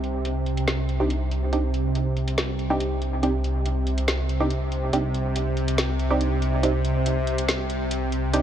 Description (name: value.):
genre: deep dubstep.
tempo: 141 BPM.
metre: 4/4.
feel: half-time.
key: C minor.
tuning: A4 = 440 Hz.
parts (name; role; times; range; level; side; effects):
bowed-like drone; sustained chords; 0.0-8.4 s; C3; -27 LUFS; right 1 dB; built-in reverb.
dark detuned saw bass; bass; 0.0-8.4 s; C2; -26 LUFS; equal; none.
garage drum kit; drums; 0.0-8.4 s; hi-hat, snare drum; -29 LUFS; equal; low-pass filter on hats, low-pass filter on snare, low-pass filter on room.
filtered dub chord stab; stabs; 1.0-8.4 s; C4 to G4; -28 LUFS; right 2 dB; chorus, cassette tape, dub echo.
room: light reverb.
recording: none.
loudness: -22 LUFS.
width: side -10 dB against mid.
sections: 0.0-8.4 A section.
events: none.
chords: 0.0 Cmadd9.